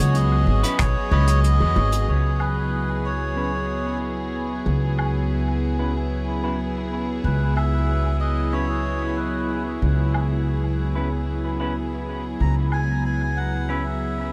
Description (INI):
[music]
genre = ambient dub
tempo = 93 BPM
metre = 4/4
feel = straight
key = C# minor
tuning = A4 = 440 Hz
[part]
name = melodica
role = melody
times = 0.0-14.3 s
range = B4 to A#5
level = -31 LUFS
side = equal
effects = dub echo
[part]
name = warm chamber string section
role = sustained chords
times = 0.0-14.3 s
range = F#3 to G#4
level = -30 LUFS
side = equal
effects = low-pass filter
[part]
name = upright bass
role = bass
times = 0.0-14.3 s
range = G#1 to E2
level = -25 LUFS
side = equal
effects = none
[part]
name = soft brush drum kit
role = drums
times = 0.1-12.9 s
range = finger snaps, hi-hat, woodblock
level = -34 LUFS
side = equal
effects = low-pass filter on hats, low-pass filter on snare, low-pass filter on perc, low-pass filter on room, dub echo
[part]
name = semi-hollow electric guitar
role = stabs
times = 0.6-13.8 s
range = C#4 to B4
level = -37 LUFS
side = equal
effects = low-pass filter, dub echo
[part]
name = electronic kick drum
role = drums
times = 0.8-0.9 s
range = none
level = -27 LUFS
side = equal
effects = none
[sound]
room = light reverb, small room ambience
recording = none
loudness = -23 LUFS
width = mono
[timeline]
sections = 0.0-2.1 A section; 2.1-14.3 B section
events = none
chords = 0.0 C#m7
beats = 0.15 0.79 1.44 | 2.08 2.73 3.37 4.02 | 4.66 5.31 5.95 6.60 | 7.24 7.89 8.53 9.18 | 9.82 10.47 11.11 11.76 | 12.40 13.05 13.69